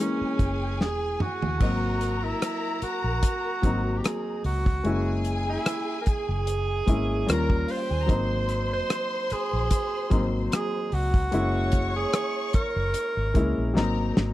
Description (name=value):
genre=lush 1970s-style soul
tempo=74 BPM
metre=4/4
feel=swing 54% on 16ths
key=unclear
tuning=A4 = 438 Hz
part: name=warm tenor saxophone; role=melody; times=0.0-14.1 s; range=C#4 to B#4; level=-30 LUFS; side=right 3 dB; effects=none
part: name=warm studio string section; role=second line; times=0.0-14.2 s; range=E#4 to C#6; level=-34 LUFS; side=left 3 dB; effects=none
part: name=warm baby grand piano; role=accompaniment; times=0.0-14.3 s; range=E3 to D#5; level=-30 LUFS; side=left 2 dB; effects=none
part: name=vintage muted fingered electric bass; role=bass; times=0.2-14.3 s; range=E1 to D#2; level=-28 LUFS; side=equal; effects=none
part: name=modern studio drum kit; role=drums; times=0.4-14.3 s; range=crash cymbal, hi-hat, kick drum, rim click, snare drum, toms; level=-25 LUFS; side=equal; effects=none
room=small room ambience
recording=dry, close 1970s-style studio recording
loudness=-23 LUFS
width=side -15 dB against mid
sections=0.0-1.6 A section; 1.6-14.3 B section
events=drum fill 0.8-1.6, 13.8-14.3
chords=0.0 F#9; 1.6 G#7; 4.9 F#9; 7.3 D#9; 8.1 G#7; 11.3 F#9; 13.8 G#9